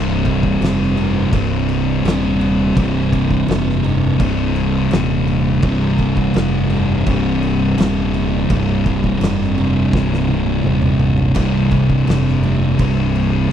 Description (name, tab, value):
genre	stoner and doom metal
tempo	84 BPM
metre	4/4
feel	straight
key	C minor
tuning	A4 = 442 Hz
part	thick fuzz guitar	riff	0.0-13.5 s	C2 to C3	-18 LUFS	left 7 dB	distortion
part	thick fuzz guitar	riff	0.0-13.5 s	C2 to C3	-19 LUFS	right 8 dB	distortion
part	fuzz fingered electric bass	bass	0.0-13.5 s	C1 to F1	-21 LUFS	equal	overdrive
part	oversized low-tuned drum kit	drums	0.3-13.3 s	crash cymbal, kick drum, snare drum, toms	-23 LUFS	equal	none
room	little or no reverb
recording	dry, close 1970s-style studio recording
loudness	-14 LUFS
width	side -9 dB against mid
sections	0.0-13.5 A section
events	drum fill 9.9-11.4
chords	0.0 Cm